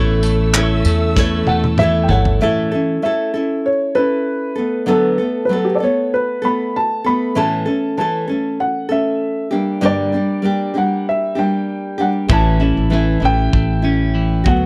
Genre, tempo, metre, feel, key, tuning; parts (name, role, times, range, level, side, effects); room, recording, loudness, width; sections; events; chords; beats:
acoustic pop; 97 BPM; 4/4; swing 55% on 16ths; A4 = 441 Hz
dark upright piano; melody; 0.0-14.7 s; G4 to B5; -22 LUFS; equal
nylon-string guitar; accompaniment; 0.0-14.7 s; G2 to C#5; -21 LUFS; equal
muted studio string section; sustained chords; 0.0-2.4 s; A4 to E6; -30 LUFS; equal
twelve-string electric guitar; arpeggios; 0.0-3.0, 12.3-14.7 s; E3 to C#4; -24 LUFS; equal
upright bass; bass; 0.0-2.4, 12.3-14.7 s; G1 to E2; -20 LUFS; equal
loose indie drum kit; drums; 0.2-2.4, 12.3-14.6 s; handclaps, kick drum, snare drum, tambourine, toms; -20 LUFS; equal
little or no reverb; dry, close 1970s-style studio recording; -17 LUFS; mono
0.0-2.4 A section; 2.4-14.7 B section
drum fill 1.2-2.4
0.0 A; 4.6 D6 (rootless); 7.4 A; 9.5 Gm; 12.3 A
0.55 1.16 1.78 | 2.40 3.02 3.64 4.26 | 4.88 5.50 6.12 6.74 | 7.36 7.97 8.59 9.21 | 9.83 10.45 11.06 11.68 | 12.30 12.91 13.53 14.15